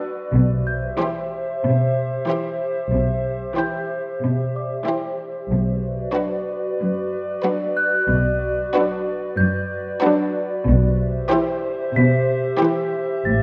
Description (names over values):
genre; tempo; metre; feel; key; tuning
cinematic, suspense film score; 93 BPM; 4/4; straight; unclear; A4 = 444 Hz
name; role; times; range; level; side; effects
warm symphonic violin section; second line; 0.0-13.1 s; F#4 to C5; -28 LUFS; equal; none
warm studio viola section; accompaniment; 0.0-13.1 s; E3 to E4; -26 LUFS; equal; none
warbly tape-like pad; sustained chords; 0.0-13.4 s; F#4 to E5; -27 LUFS; equal; chorus, built-in reverb
celesta; texture; 0.0-13.4 s; D5 to B6; -29 LUFS; equal; none
rich symphonic double bass section; bass; 0.3-13.4 s; A1 to B1; -23 LUFS; equal; none
warm symphonic cello section; bass; 0.3-13.4 s; F#2 to B2; -24 LUFS; equal; none
room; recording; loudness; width
moderate scoring stage reverb, RT60 2.0 s; none; -22 LUFS; mono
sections
0.0-13.4 A section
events
none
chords
0.3 C/B; 5.5 Bm; 10.7 C/B